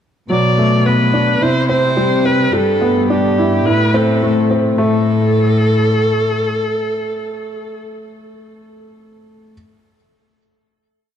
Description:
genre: piano and strings electronica.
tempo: 107 BPM.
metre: 4/4.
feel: straight.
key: A dorian.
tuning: A4 = 438 Hz.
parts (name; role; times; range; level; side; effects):
warm viola; melody; 0.3-7.8 s; G4 to D5; -18 LUFS; right 1 dB; ping-pong delay.
dark upright piano; riff; 0.3-9.5 s; F#3 to E4; -17 LUFS; left 1 dB; ping-pong delay.
warm studio cello section; bass; 0.3-6.4 s; G2 to C3; -17 LUFS; equal; none.
room: moderate echo chamber reverb, RT60 2.6 s.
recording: dark, warm production.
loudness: -12 LUFS.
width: side -8 dB against mid.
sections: 0.3-4.8 build; 4.8-7.0 final note.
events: build-up 0.3-4.8.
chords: 0.3 Bm7; 1.4 C; 2.5 G6; 3.7 Am; 4.8 N.C..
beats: | 0.30 0.86 1.42 1.98 | 2.54 3.10 3.66 4.22 | 4.78 5.34 5.90 6.46.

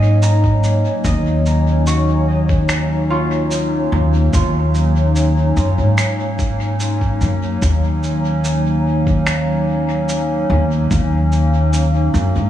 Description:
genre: ambient dub.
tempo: 73 BPM.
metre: 4/4.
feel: straight.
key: Eb minor.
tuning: A4 = 438 Hz.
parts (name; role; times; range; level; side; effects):
warbly tape-like pad; sustained chords; 0.0-12.5 s; Gb3 to Db5; -20 LUFS; equal; chorus, built-in reverb.
concert harp; arpeggios; 0.0-6.2 s; F4 to Bb5; -25 LUFS; right 2 dB; tape echo.
upright bass; bass; 0.0-12.5 s; Eb2 to Ab2; -16 LUFS; equal; tube saturation.
electronic cabasa and finger snaps; drums; 0.2-12.3 s; none; -27 LUFS; right 1 dB; dub echo.
electronic kick drum; drums; 0.4-11.1 s; none; -20 LUFS; equal; none.
room: light reverb, digital ambience.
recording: studio reverb.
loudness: -14 LUFS.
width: side -11 dB against mid.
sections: 0.0-12.5 A section.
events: none.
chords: 0.0 Ebm7.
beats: 0.23 | 1.05 1.87 2.69 3.51 | 4.33 5.16 5.98 6.80 | 7.62 8.45 9.27 10.09 | 10.91 11.73.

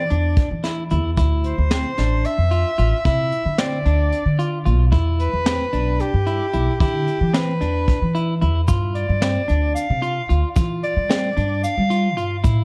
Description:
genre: progressive instrumental, band music in an uneven meter.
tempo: 224 BPM (eighths).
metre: 7/8.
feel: straight.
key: D dorian.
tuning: A4 = 441 Hz.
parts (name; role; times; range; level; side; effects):
clear soprano saxophone; melody; 0.0-12.4 s; G4 to F5; -27 LUFS; equal; tape echo.
clean electric guitar; arpeggios; 0.0-12.6 s; C4 to F4; -29 LUFS; equal; tape echo.
upright bass; bass; 0.0-12.6 s; A1 to G3; -22 LUFS; equal; none.
vintage brush drum kit; drums; 0.1-12.6 s; hi-hat, kick drum, snare drum; -24 LUFS; equal; none.
tube shaker; percussion; 8.7-12.6 s; none; -43 LUFS; equal; none.
room: light reverb, small room ambience.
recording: dark, warm production.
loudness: -20 LUFS.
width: mono.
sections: 0.0-1.2 A section; 1.2-12.6 B section.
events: none.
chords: 0.0 E7(no3); 1.2 Dm9; 4.9 Em7; 8.7 G7sus4.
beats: 0.10 0.37 0.64 0.91 | 1.18 1.44 1.71 1.98 2.25 2.52 2.79 | 3.05 3.32 3.59 3.86 4.12 4.39 4.66 | 4.93 5.20 5.47 5.73 6.00 6.27 6.54 | 6.81 7.08 7.34 7.61 7.88 8.15 8.42 | 8.69 8.95 9.22 9.49 9.76 10.03 10.29 | 10.56 10.83 11.10 11.37 11.63 11.90 12.17 | 12.44.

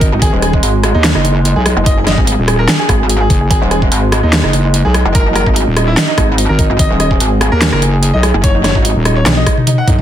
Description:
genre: heavy wobble dubstep.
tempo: 146 BPM.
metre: 4/4.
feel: swing 54% on 16ths, half-time.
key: G# minor.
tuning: A4 = 440 Hz.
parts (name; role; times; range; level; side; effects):
clear baby grand piano; melody; 0.0-10.0 s; G#3 to F#5; -18 LUFS; right 1 dB; dub echo.
wobble bass; bass; 0.0-10.0 s; D#1 to D#2; -12 LUFS; equal; chorus, overdrive.
dubstep drum kit; drums; 0.0-10.0 s; handclaps, hi-hat, rim click, snare drum, toms; -15 LUFS; equal; overdrive.
electronic kick drum; drums; 0.0-10.0 s; none; -14 LUFS; equal; overdrive.
pulsing pluck wobble bass; bass; 0.1-9.4 s; D#1 to B1; -13 LUFS; equal; chorus, overdrive.
room: light reverb, digital ambience.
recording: dense, heavily limited modern master.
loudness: -9 LUFS.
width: side -11 dB against mid.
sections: 0.0-10.0 A section.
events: drum fill 9.3-10.0.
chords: 0.0 G#5.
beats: | 0.22 0.63 1.04 1.45 | 1.86 2.27 2.68 3.10 | 3.51 3.92 4.33 4.74 | 5.15 5.56 5.97 6.38 | 6.79 7.21 7.62 8.03 | 8.44 8.85 9.26 9.67.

